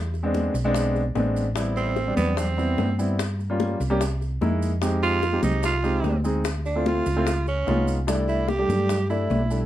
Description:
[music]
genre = Afro-Cuban jazz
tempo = 147 BPM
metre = 4/4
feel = straight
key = C major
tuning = A4 = 440 Hz
[part]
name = hollow-body short-scale fingered electric bass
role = bass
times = 0.0-9.7 s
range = A1 to G2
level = -26 LUFS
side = equal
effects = none
[part]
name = bongos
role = percussion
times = 0.1-9.5 s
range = none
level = -33 LUFS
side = left 7 dB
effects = none
[part]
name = congas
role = percussion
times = 0.1-9.7 s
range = none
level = -31 LUFS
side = left 1 dB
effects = none
[part]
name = maracas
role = percussion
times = 0.1-9.7 s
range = none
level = -42 LUFS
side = right 7 dB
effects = none
[part]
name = dark concert grand piano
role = accompaniment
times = 0.2-9.7 s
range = G3 to Ab4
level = -26 LUFS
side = equal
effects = none
[part]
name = growling tenor saxophone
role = second line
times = 1.8-9.7 s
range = B3 to G4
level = -26 LUFS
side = right 3 dB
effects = none
[sound]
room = light reverb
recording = dark, warm production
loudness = -21 LUFS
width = side -13 dB against mid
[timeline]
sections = 0.0-9.7 A section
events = tenor saxophone solo 0.0-9.7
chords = 0.0 E7b13; 1.6 Am9; 3.2 Gm7b5; 4.0 C7alt; 4.8 Fm9; 6.5 Dm7; 7.3 Db9; 8.1 C6

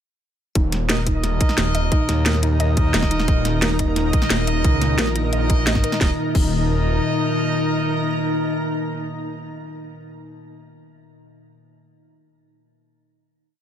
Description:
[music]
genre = dark technical drum and bass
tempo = 176 BPM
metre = 4/4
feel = straight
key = unclear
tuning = A4 = 440 Hz
[part]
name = metallic inharmonic drone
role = sustained chords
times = 1.2-9.5 s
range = Bb2 to Eb4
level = -25 LUFS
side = left 2 dB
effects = chorus, built-in reverb, sidechain pumping
[part]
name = warbly dusty pluck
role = arpeggios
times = 0.6-6.4 s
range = Eb4 to Eb5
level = -30 LUFS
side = left 1 dB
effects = chorus, sidechain pumping, tape echo
[part]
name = wide detuned saw bass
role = bass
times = 0.6-7.0 s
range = Eb1 to Db2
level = -22 LUFS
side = equal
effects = chorus, overdrive, sidechain pumping
[part]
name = drum and bass drum kit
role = drums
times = 0.6-6.5 s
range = crash cymbal, hi-hat, snare drum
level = -23 LUFS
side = equal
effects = overdrive
[part]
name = electronic kick drum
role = drums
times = 0.6-6.5 s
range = none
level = -19 LUFS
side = equal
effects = overdrive
[part]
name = granular cloud pad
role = texture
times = 2.2-9.5 s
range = Eb4 to Bb5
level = -30 LUFS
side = equal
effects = built-in reverb, sidechain pumping
[part]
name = clear brass ensemble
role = stabs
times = 0.9-9.5 s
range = Eb4 to Eb5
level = -27 LUFS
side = right 1 dB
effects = tape echo
[part]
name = formant-sweep wobble bass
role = bass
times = 2.1-2.9 s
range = Eb2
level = -19 LUFS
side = equal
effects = chorus
[sound]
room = light reverb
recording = none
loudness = -17 LUFS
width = side -10 dB against mid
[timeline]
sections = 0.6-6.0 drop; 6.0-8.7 final chord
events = drop 0.6-6.0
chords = 0.6 Eb5

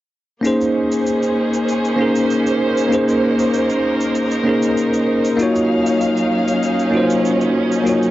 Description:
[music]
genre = sunset chillout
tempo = 97 BPM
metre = 4/4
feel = straight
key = Bb minor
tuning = A4 = 440 Hz
[part]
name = bell-like tine electric piano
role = accompaniment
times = 0.4-8.1 s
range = Bb3 to Db5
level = -16 LUFS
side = equal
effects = auto-pan, cassette tape, tape echo
[part]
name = rich chamber string section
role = sustained chords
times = 0.4-8.1 s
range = Gb3 to F5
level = -20 LUFS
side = right 1 dB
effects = cassette tape
[part]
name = cabasa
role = drums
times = 0.4-8.1 s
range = none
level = -35 LUFS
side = right 2 dB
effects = none
[sound]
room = light reverb, small room ambience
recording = home recording on cassette, nothing above 7.7 kHz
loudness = -15 LUFS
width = side -14 dB against mid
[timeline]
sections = 0.4-8.1 A section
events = none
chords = 0.4 Bbm11; 5.4 Ebm9

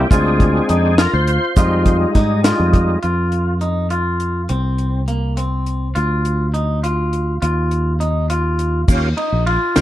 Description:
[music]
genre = progressive instrumental, band music in an uneven meter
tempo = 205 BPM (eighths)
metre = 5/8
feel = straight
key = unclear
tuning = A4 = 440 Hz
[part]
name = overdriven tonewheel organ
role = accompaniment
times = 0.0-3.0, 8.9-9.8 s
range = G3 to C5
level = -19 LUFS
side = equal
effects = chorus vibrato, slow rotary speaker, plate reverb
[part]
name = clean electric guitar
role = arpeggios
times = 0.0-9.8 s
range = Bb3 to F4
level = -21 LUFS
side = left 1 dB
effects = slapback echo, plate reverb
[part]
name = fingered electric bass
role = bass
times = 0.0-9.8 s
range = Bb1 to Ab2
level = -18 LUFS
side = equal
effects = none
[part]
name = deep reggae drum kit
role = drums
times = 0.1-9.8 s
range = crash cymbal, hi-hat, kick drum, ride cymbal, snare drum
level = -17 LUFS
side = equal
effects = none
[part]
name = tube shaker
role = percussion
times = 0.1-2.7, 8.9-9.8 s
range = none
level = -35 LUFS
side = right 6 dB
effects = none
[sound]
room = moderate small room reverb, RT60 0.5 s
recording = dark, warm production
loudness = -15 LUFS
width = side -13 dB against mid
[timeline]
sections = 0.0-3.0 A section; 3.0-8.9 B section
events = tonewheel organ solo 0.0-3.0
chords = 0.1 Dm7b5; 1.6 Fm9; 3.0 Ebsus2/F; 4.5 Bbsus2/C; 6.0 Dm; 7.4 Ebsus2; 8.9 Eb7

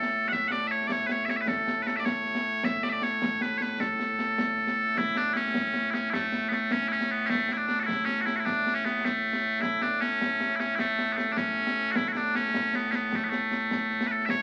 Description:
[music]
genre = scottish traditional, Scottish pipe music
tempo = 103 BPM (dotted quarters)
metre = 6/8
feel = straight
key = A major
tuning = A4 = 442 Hz
[part]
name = loud bright bagpipes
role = melody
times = 0.0-14.4 s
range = A2 to F#5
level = -28 LUFS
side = equal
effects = none
[part]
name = concert snare drum and concert bass drum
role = drums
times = 0.0-14.4 s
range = none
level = -36 LUFS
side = equal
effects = none
[sound]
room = moderate studio reverb, RT60 0.8 s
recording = very old 78 rpm record, vinyl crackle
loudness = -28 LUFS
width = mono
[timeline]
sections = 0.0-5.0 A section; 5.0-14.3 A section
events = none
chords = none

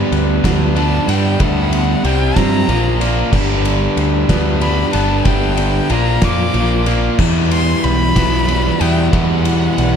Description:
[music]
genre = post-rock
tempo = 62 BPM (dotted quarters)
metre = 6/8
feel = straight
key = G major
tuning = A4 = 441 Hz
[part]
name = dark symphonic string section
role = sustained chords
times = 0.0-10.0 s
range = F3 to G5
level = -32 LUFS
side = equal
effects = none
[part]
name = twangy electric guitar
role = arpeggios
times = 0.0-10.0 s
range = G2 to D4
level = -26 LUFS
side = left 2 dB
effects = none
[part]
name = vibraphone with medium mallets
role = arpeggios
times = 0.0-10.0 s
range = B4 to F5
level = -28 LUFS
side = right 11 dB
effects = tape echo
[part]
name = distorted electric guitar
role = riff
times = 0.0-10.0 s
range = E2 to C4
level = -20 LUFS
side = right 12 dB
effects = distortion
[part]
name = overdriven electric guitar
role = riff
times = 0.0-10.0 s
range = G2 to G4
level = -20 LUFS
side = left 14 dB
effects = none
[part]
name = growling picked electric bass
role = bass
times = 0.1-10.0 s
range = G1 to G2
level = -17 LUFS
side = equal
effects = overdrive
[part]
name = oversized low-tuned drum kit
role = drums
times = 0.1-9.9 s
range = crash cymbal, kick drum, ride cymbal, snare drum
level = -20 LUFS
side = equal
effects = none
[part]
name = rich violin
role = melody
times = 0.8-10.0 s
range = F#5 to D6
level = -23 LUFS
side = left 2 dB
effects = tape echo
[sound]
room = studio reverb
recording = dark, warm production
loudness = -12 LUFS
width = side -7 dB against mid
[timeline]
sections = 0.0-10.0 A section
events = none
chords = 0.0 Gmaj7; 2.0 C5; 2.7 Bb5; 3.3 G; 5.9 Bb5; 7.2 Emadd9

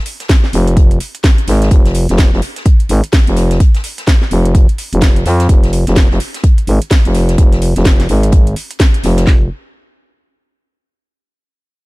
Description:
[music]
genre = bass house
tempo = 127 BPM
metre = 4/4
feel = swing 61% on 16ths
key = F minor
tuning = A4 = 441 Hz
[part]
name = house drum kit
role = drums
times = 0.1-9.3 s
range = hi-hat, snare drum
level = -20 LUFS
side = equal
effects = none
[part]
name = open jazz drum kit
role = drums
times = 0.1-9.3 s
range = hi-hat, snare drum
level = -29 LUFS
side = left 2 dB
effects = sidechain pumping on hats, high-pass filter on hats, high-pass filter on snare, high-pass filter on room
[part]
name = house drum kit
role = drums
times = 0.3-9.4 s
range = handclaps, kick drum, snare drum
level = -9 LUFS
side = equal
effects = none
[part]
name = growling FM bass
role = bass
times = 0.5-9.5 s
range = F1 to F2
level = -12 LUFS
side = equal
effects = sidechain pumping
[sound]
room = small room reverb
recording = dark, warm production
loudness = -9 LUFS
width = side -22 dB against mid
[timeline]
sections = 0.0-9.3 A section; 9.3-11.2 B section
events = filter sweep on FM bass 0.0-9.3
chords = none

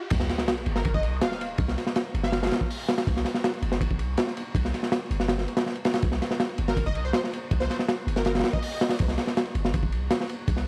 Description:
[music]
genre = drum and bass, jungle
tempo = 162 BPM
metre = 4/4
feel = straight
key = C minor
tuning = A4 = 438 Hz
[part]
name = riser and sub drop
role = sound effects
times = 0.0-1.6 s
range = none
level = -39 LUFS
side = equal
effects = none
[part]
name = long sustained 808-style bass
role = bass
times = 0.1-10.6 s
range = G1 to C2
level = -30 LUFS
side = equal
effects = none
[part]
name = crunchy breakbeat drum kit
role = drums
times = 0.1-10.7 s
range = crash cymbal, hi-hat, kick drum, ride cymbal, snare drum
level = -28 LUFS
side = equal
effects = none
[part]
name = plucky unison lead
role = melody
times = 0.8-2.5, 6.7-9.1 s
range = Bb4 to F5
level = -37 LUFS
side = equal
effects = ensemble chorus, dub echo
[sound]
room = small room ambience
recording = dry, gritty hardware recording, transformer saturation, vinyl crackle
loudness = -26 LUFS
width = mono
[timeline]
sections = 0.1-10.7 A section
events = drop 0.1-10.7; impact 0.1-1.6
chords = 0.1 C5

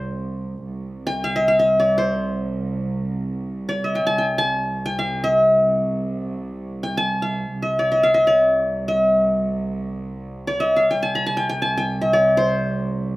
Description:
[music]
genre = Arabic maqam ensemble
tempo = free time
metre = none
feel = none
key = C maqam huzam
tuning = A4 = 440 Hz
[part]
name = qanun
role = melody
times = 0.0-13.2 s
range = C5 to Bb5+50c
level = -18 LUFS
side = left 1 dB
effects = slapback echo
[part]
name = dark studio cello section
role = drone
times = 0.0-13.2 s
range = C2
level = -26 LUFS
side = right 2 dB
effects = none
[sound]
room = light reverb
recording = recorded outdoors, with no room sound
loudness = -18 LUFS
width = side -19 dB against mid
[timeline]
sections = 0.6-13.2 A section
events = none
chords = none

